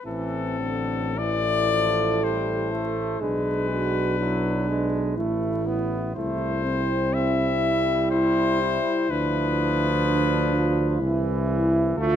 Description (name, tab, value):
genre	classical, hymn-like piece for brass band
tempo	52-63 BPM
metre	3/4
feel	rubato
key	A minor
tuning	A4 = 444 Hz
part	warm cornet	melody	0.0-12.2 s	A4 to E5	-27 LUFS	left 7 dB	none
part	bright trombone	accompaniment	0.1-12.2 s	D3 to B3	-31 LUFS	right 4 dB	none
part	mellow euphonium	accompaniment	0.1-12.2 s	C4 to F4	-28 LUFS	left 2 dB	none
part	mellow tuba	bass	0.1-12.2 s	A1 to D2	-28 LUFS	right 1 dB	none
part	mellow French horn section	second line	1.2-12.2 s	D4 to A4	-28 LUFS	right 5 dB	none
room	light reverb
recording	close, detailed microphones, vinyl crackle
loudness	-21 LUFS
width	side -9 dB against mid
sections	0.1-12.2 A section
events	none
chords	0.1 Am; 3.2 G#dim/B; 5.2 A5; 6.2 C; 9.1 Bdim/D; 11.0 C